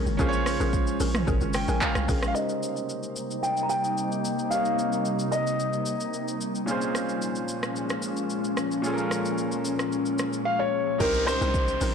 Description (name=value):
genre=amapiano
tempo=111 BPM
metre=4/4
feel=straight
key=C phrygian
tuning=A4 = 440 Hz
part: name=warm concert grand piano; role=melody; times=0.0-6.4, 10.5-11.9 s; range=Bb4 to Bb5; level=-28 LUFS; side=left 2 dB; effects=low-pass filter, ping-pong delay
part: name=bright grand piano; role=accompaniment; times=0.0-11.9 s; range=Bb2 to Ab5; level=-32 LUFS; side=right 3 dB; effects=low-pass filter
part: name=glassy FM pad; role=sustained chords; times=0.0-11.9 s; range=Bb2 to Eb4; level=-29 LUFS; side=left 1 dB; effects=ensemble chorus, built-in reverb, sidechain pumping, low-pass filter
part: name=mallet-like synth pluck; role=stabs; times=0.0-2.2, 11.0-11.9 s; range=C4 to Bb4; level=-34 LUFS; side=left 4 dB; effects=chorus, ping-pong delay
part: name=hollow log drum bass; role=bass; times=0.0-2.3, 11.0-11.9 s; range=Ab1 to C2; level=-28 LUFS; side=right 1 dB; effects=none
part: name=deep house drum kit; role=drums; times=0.1-11.9 s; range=crash cymbal, handclaps, hi-hat, kick drum, rim click, shaker, toms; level=-31 LUFS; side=equal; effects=none
part: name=downlifter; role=sound effects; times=11.0-11.9 s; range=none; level=-35 LUFS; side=equal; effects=none
room=light reverb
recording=blown-out, overdriven recording, overdrive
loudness=-24 LUFS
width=side -6 dB against mid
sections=0.0-2.4 A section; 2.4-11.0 B section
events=drop 0.0-2.4; grand piano fill 1.3-2.4; filter sweep 2.4-11.0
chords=0.0 Bbm7; 2.4 Cm7; 6.7 Bbm7; 11.0 Cm7